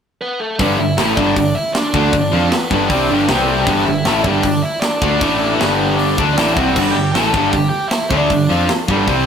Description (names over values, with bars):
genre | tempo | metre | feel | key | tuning
punk rock | 156 BPM | 4/4 | straight | G major | A4 = 440 Hz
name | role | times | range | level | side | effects
bluesy overdriven lead guitar | melody | 0.2-8.6 s | A3 to A5 | -20 LUFS | right 1 dB | distortion, tape echo
cranked stack guitar | riff | 0.6-9.3 s | G2 to F4 | -19 LUFS | left 6 dB | overdrive
distorted electric guitar | riff | 0.6-9.3 s | G2 to F4 | -19 LUFS | right 5 dB | distortion
distorted electric guitar | riff | 0.6-9.3 s | G2 to F4 | -22 LUFS | equal | overdrive
growling picked electric bass | bass | 0.6-9.2 s | G1 to F2 | -22 LUFS | equal | overdrive
tight metal drum kit | drums | 0.6-9.2 s | crash cymbal, hi-hat, kick drum, snare drum | -21 LUFS | right 1 dB | none
room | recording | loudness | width
moderate studio reverb, RT60 0.6 s | rough rehearsal-room recording | -13 LUFS | side -7 dB against mid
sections
0.6-9.3 A section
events
none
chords
0.0 Asus2; 0.6 G; 3.3 C5; 3.7 G; 5.2 A5; 5.6 G5